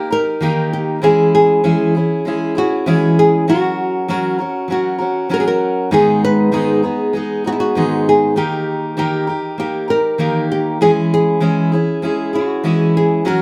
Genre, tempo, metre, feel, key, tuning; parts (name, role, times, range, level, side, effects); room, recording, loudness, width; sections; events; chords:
acoustic pop; 98 BPM; 4/4; straight; A4 = 440 Hz
nylon-string guitar; melody; 0.0-13.4 s; E4 to B4; -19 LUFS; equal
fingerpicked steel-string acoustic guitar; accompaniment; 0.0-13.4 s; G#2 to A#4; -18 LUFS; equal
moderate studio reverb, RT60 0.6 s; -16 LUFS; mono
0.0-13.4 A section
0.0 D#; 1.0 C#m/E; 3.5 F#; 5.9 G#m; 8.4 D#; 10.8 C#m/E